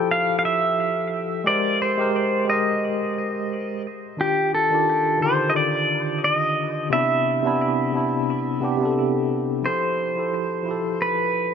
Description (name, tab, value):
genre	chillout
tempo	88 BPM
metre	4/4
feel	swing 56% on 16ths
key	F lydian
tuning	A4 = 439 Hz
part	pedal steel guitar	melody	0.0-11.5 s	G4 to G5	-22 LUFS	equal	ping-pong delay
part	bright tine electric piano	accompaniment	0.0-11.5 s	C3 to C5	-23 LUFS	moving between left 5 dB and right 4 dB	medium stereo tremolo, auto-pan, tape echo
room	moderate plate reverb, RT60 3.9 s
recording	nothing above 7.5 kHz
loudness	-20 LUFS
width	side -7 dB against mid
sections	0.0-9.6 A section; 9.6-11.5 B section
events	none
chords	0.0 Fmaj9; 1.5 Abmaj9; 3.9 Ebmaj9; 6.9 Cmaj9; 9.6 Fmaj9